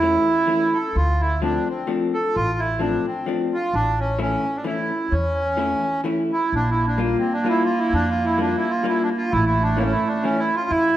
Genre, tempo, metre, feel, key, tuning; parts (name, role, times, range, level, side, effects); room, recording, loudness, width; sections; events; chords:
musette; 129 BPM; 3/4; swing 53% on 8ths; A4 = 440 Hz
accordion; melody; 0.0-11.0 s; Bb3 to A4; -22 LUFS; right 2 dB
vintage hollow-body jazz guitar; accompaniment; 0.0-10.5 s; E3 to F4; -25 LUFS; left 4 dB
upright bass; bass; 0.0-11.0 s; A1 to F2; -24 LUFS; equal
warm clarinet; second line; 6.5-10.9 s; A3 to Bb3; -24 LUFS; right 2 dB
wet recital hall reverb, RT60 1.6 s; -19 LUFS; side -13 dB against mid
0.0-11.0 A section
0.0 A; 1.0 Dm7; 3.7 A; 6.5 Bb6; 9.3 A